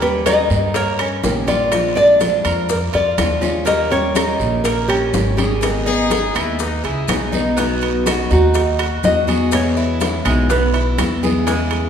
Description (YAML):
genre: latin, Cuban son and guajira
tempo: 123 BPM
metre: 4/4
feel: straight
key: unclear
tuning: A4 = 439 Hz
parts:
  - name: nylon-string guitar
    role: melody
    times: 0.0-11.2 s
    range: F#4 to D#5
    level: -20 LUFS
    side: left 1 dB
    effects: none
  - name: picked steel-string acoustic guitar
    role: accompaniment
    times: 0.0-11.9 s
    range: B2 to G#4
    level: -23 LUFS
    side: left 3 dB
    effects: none
  - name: Cuban tres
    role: arpeggios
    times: 0.0-11.9 s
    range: G#3 to B4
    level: -21 LUFS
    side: right 3 dB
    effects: none
  - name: upright bass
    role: bass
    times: 0.0-11.9 s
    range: G#1 to G2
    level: -21 LUFS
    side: equal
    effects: none
  - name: bongos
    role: percussion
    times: 0.0-11.9 s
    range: none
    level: -28 LUFS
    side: left 5 dB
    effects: none
  - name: congas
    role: percussion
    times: 0.0-11.9 s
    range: none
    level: -28 LUFS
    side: left 2 dB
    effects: none
  - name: maracas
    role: percussion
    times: 0.0-11.9 s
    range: none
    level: -34 LUFS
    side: left 6 dB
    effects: none
  - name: timbales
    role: percussion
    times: 0.0-11.9 s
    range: none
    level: -27 LUFS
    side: right 5 dB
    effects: none
  - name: claves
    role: percussion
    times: 0.3-11.2 s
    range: none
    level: -34 LUFS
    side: left 2 dB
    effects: none
  - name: guiro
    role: percussion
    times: 0.3-11.9 s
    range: none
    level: -34 LUFS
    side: right 6 dB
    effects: none
  - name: brilliant trumpet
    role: second line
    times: 5.9-7.6 s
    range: D#4 to G#4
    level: -24 LUFS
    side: left 4 dB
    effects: none
room: wet recital hall reverb, RT60 1.8 s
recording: recorded in a church or concert hall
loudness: -14 LUFS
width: side -8 dB against mid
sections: 0.0-7.6 A section; 7.6-11.9 B section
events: none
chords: 0.0 D#7; 1.7 A#7; 3.7 D#7; 5.6 G#m; 7.6 B; 9.5 E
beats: 0.26 0.74 1.23 | 1.72 2.21 2.69 3.18 | 3.67 4.16 4.65 5.13 | 5.62 6.11 6.60 7.09 | 7.58 8.06 8.55 9.04 | 9.53 10.01 10.50 10.99 | 11.48